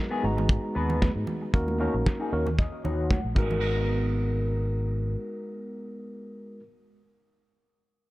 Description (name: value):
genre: nu-disco, nu disco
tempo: 115 BPM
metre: 4/4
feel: straight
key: G# minor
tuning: A4 = 440 Hz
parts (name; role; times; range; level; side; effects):
- tine electric piano; accompaniment; 0.0-6.6 s; G#3 to A#5; -31 LUFS; equal; overdrive, sidechain pumping, low-pass filter, tape echo
- electric guitar at the edge of break-up; riff; 0.1-6.6 s; B3 to F#5; -34 LUFS; left 1 dB; lush chorus, low-pass filter, tape echo
- fingered electric bass with an envelope filter; bass; 0.2-5.2 s; G#1 to G#2; -28 LUFS; equal; tube saturation
- congas; percussion; 0.2-3.6 s; none; -36 LUFS; right 3 dB; none
- kick drum; drums; 0.5-3.5 s; none; -24 LUFS; equal; none
- damped 70s drum kit; drums; 1.0-3.5 s; crash cymbal, snare drum; -36 LUFS; right 1 dB; low-pass filter on cymbals, low-pass filter on snare, low-pass filter on room
room: studio reverb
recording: none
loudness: -24 LUFS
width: side -18 dB against mid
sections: 0.0-3.6 A section; 3.6-7.8 B section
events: filter sweep on drum 0.0-3.6; filter sweep on clean electric guitar 0.0-3.6; filter sweep on tine electric piano 0.0-3.6; clean electric guitar fill 2.1-3.6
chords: 0.0 G#m9; 1.5 D#m7; 3.4 G#m9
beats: 0.50 1.02 | 1.54 2.06 2.58 3.10 | 3.63 4.15 4.67 5.19 | 5.71 6.24